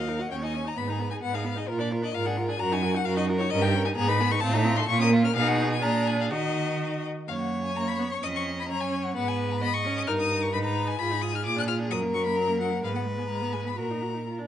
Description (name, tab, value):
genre	quick classical-period movement for string quartet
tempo	130 BPM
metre	2/4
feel	rubato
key	Eb minor, F# major from 7.3 s, Eb minor from 11.0 s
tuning	A4 = 438 Hz
part	rich violin	melody	0.0-14.5 s	Bb4 to Gb6	-30 LUFS	left 8 dB	none
part	rich violin	second line	0.0-14.5 s	F4 to D#5	-31 LUFS	left 3 dB	none
part	warm viola	accompaniment	0.0-14.5 s	Gb3 to Gb4	-32 LUFS	right 2 dB	none
part	rich cello	bass	0.0-14.5 s	Eb2 to Eb3	-29 LUFS	right 4 dB	none
room	moderate large studio reverb, RT60 1.4 s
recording	nothing above 10.7 kHz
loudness	-24 LUFS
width	side -10 dB against mid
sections	0.0-7.3 A section; 7.3-14.5 B section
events	none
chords	0.3 Eb7(no3); 0.8 Abm; 1.7 Bb; 2.2 Bb7/Ab; 2.6 Ebm/Gb; 3.5 Eb7/G; 4.0 Abm; 4.4 F7/A; 4.9 Bbm; 5.3 Abm/Cb; 5.8 Bb7; 6.3 Ebm; 7.3 F#; 8.2 C#/E#; 8.7 F#5; 9.2 G#m; 10.1 D#/G; 10.5 G#m; 11.0 Fm7b5/Ab; 11.5 Bb; 11.9 Gb; 12.8 Abmadd9; 13.8 Ebm/Bb